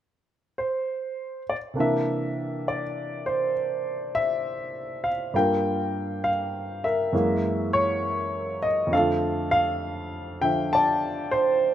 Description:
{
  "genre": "solo jazz",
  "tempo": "67 BPM",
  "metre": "4/4",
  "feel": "swing 66% on 8ths",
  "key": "C mixolydian",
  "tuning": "A4 = 440 Hz",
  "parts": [
    { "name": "warm concert grand piano", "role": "solo", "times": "0.6-11.7 s", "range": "F2 to A5", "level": "-23 LUFS", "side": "equal", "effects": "none" }
  ],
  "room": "light reverb",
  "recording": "rough home demo mix",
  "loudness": "-23 LUFS",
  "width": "side -11 dB against mid",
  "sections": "0.0-1.7 A section; 1.7-11.7 B section",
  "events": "none",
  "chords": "0.0 N.C.; 1.7 C9; 5.3 Gm7; 7.1 F#9; 8.9 F6"
}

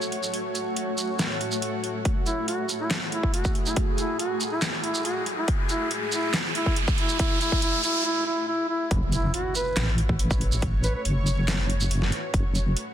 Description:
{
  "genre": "deep dubstep",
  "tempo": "140 BPM",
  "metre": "4/4",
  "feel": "half-time",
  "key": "F# minor",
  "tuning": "A4 = 441 Hz",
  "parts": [
    { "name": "granular cloud pad", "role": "sustained chords", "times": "0.0-12.9 s", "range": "A3 to C#5", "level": "-32 LUFS", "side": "equal", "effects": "built-in reverb" },
    { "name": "dubstep drum kit", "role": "drums", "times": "0.0-12.9 s", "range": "handclaps, hi-hat, shaker, snare drum", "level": "-30 LUFS", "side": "right 1 dB", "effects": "overdrive" },
    { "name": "electronic kick drum", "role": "drums", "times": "2.1-12.4 s", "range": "none", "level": "-25 LUFS", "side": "equal", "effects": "overdrive" },
    { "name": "riser and impact", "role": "sound effects", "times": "4.2-10.6 s", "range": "none", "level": "-30 LUFS", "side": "right 1 dB", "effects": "none" },
    { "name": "mellow duduk", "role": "melody", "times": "2.3-11.0 s", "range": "E4 to B4", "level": "-29 LUFS", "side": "equal", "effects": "dub echo" },
    { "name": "deep soft wobble bass", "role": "bass", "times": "8.9-12.8 s", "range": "F#1 to A1", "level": "-24 LUFS", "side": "equal", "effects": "chorus, tube saturation" }
  ],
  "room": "light reverb",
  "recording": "dense, heavily limited modern master, vinyl crackle",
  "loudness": "-23 LUFS",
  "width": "side -10 dB against mid",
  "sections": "0.0-8.9 A section; 8.9-12.9 B section",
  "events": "build-up 0.0-8.9; riser 4.2-8.1; break 8.1-8.9; drop 8.9-12.9; impact 8.9-10.6",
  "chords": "0.0 F#m"
}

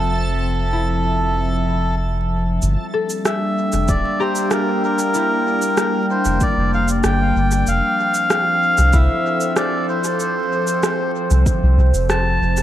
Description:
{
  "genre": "ambient dub",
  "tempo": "95 BPM",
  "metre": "4/4",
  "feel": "straight",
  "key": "G dorian",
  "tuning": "A4 = 439 Hz",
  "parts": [
    { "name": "melodica", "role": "melody", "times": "0.0-12.6 s", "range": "A4 to A5", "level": "-21 LUFS", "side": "equal", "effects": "dub echo" },
    { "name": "warbly tape-like pad", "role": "sustained chords", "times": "0.0-12.6 s", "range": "F3 to A5", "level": "-22 LUFS", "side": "equal", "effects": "chorus, built-in reverb" },
    { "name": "round analog bass", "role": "bass", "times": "0.0-12.6 s", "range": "D1 to C2", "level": "-18 LUFS", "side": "equal", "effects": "none" },
    { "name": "backwards swelling texture", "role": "texture", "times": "0.0-2.6 s", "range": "A5", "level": "-37 LUFS", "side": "right 2 dB", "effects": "built-in reverb" },
    { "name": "concert harp", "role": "arpeggios", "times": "0.7-11.5 s", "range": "E4 to Bb5", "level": "-28 LUFS", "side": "left 5 dB", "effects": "dub echo" },
    { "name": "electronic cabasa and rim click", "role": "drums", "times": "2.6-12.6 s", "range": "none", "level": "-24 LUFS", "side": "right 1 dB", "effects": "dub echo" },
    { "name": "electronic kick drum", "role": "drums", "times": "3.9-11.6 s", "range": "none", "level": "-20 LUFS", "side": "equal", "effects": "overdrive" }
  ],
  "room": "moderate spring reverb, RT60 2.3 s",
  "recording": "vinyl crackle",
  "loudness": "-16 LUFS",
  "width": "side -12 dB against mid",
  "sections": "0.0-2.6 A section; 2.6-12.6 B section",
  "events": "none",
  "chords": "0.0 Fmaj7; 2.6 Gm; 7.7 Fmaj7"
}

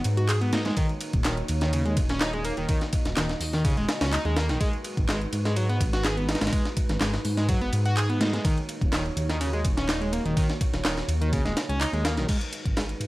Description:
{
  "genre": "breakbeat, breaks",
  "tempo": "125 BPM",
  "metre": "4/4",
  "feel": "straight",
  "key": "G# minor",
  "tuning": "A4 = 440 Hz",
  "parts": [
    { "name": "dark analog pad", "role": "sustained chords", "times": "0.0-13.1 s", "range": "G#3 to D#5", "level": "-34 LUFS", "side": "right 2 dB", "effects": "chorus, vintage 12-bit sampler grit, sidechain pumping" },
    { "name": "garage drum kit", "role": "drums", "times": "0.0-13.1 s", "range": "handclaps, hi-hat", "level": "-34 LUFS", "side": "equal", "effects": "none" },
    { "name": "dark detuned saw bass", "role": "bass", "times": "0.1-13.1 s", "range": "D#1 to G#2", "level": "-27 LUFS", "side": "equal", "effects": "none" },
    { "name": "breakbeat sampler-style drum kit", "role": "drums", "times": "0.1-13.1 s", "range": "crash cymbal, hi-hat, kick drum, ride cymbal, snare drum", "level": "-28 LUFS", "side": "equal", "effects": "none" },
    { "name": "overdriven synth lead", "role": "riff", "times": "0.2-12.8 s", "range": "C#3 to G#4", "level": "-29 LUFS", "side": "equal", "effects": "dub echo" }
  ],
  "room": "light reverb",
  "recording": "vinyl crackle",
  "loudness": "-23 LUFS",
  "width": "side -18 dB against mid",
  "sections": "0.0-12.3 A section",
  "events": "drop 0.0-12.3",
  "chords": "0.0 G#m7; 0.8 D#m7; 4.6 G#m7; 8.4 D#m7; 12.3 G#m7"
}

